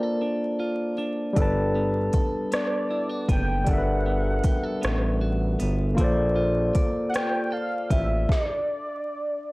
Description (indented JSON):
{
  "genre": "slow six-eight R&B",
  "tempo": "52 BPM (dotted quarters)",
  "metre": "6/8",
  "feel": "straight",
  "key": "G major",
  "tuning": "A4 = 440 Hz",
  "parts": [
    { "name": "warm velvety synth lead", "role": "melody", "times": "0.0-9.5 s", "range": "Bb4 to G5", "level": "-30 LUFS", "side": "equal", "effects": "chorus" },
    { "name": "clean electric guitar", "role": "second line", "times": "0.0-8.9 s", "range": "G3 to D5", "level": "-33 LUFS", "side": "right 2 dB", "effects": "none" },
    { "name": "barky tine electric piano", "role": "accompaniment", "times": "0.0-8.3 s", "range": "G3 to A5", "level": "-26 LUFS", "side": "left 1 dB", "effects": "none" },
    { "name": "smooth gliding synth bass", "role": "bass", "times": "1.4-8.3 s", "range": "F#1 to Bb1", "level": "-26 LUFS", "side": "equal", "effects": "tube saturation" },
    { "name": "smooth R&B drum kit", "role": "drums", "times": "1.4-8.5 s", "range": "hi-hat, kick drum, rim click, snare drum", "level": "-25 LUFS", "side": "equal", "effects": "none" }
  ],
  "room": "light reverb, digital ambience",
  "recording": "dry, gritty hardware recording, vinyl crackle",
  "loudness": "-22 LUFS",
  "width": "side -22 dB against mid",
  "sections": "0.0-9.5 A section",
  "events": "stop 8.3-9.5",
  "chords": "0.0 Bbmaj7; 1.4 Gmaj9; 6.0 Bbmaj7"
}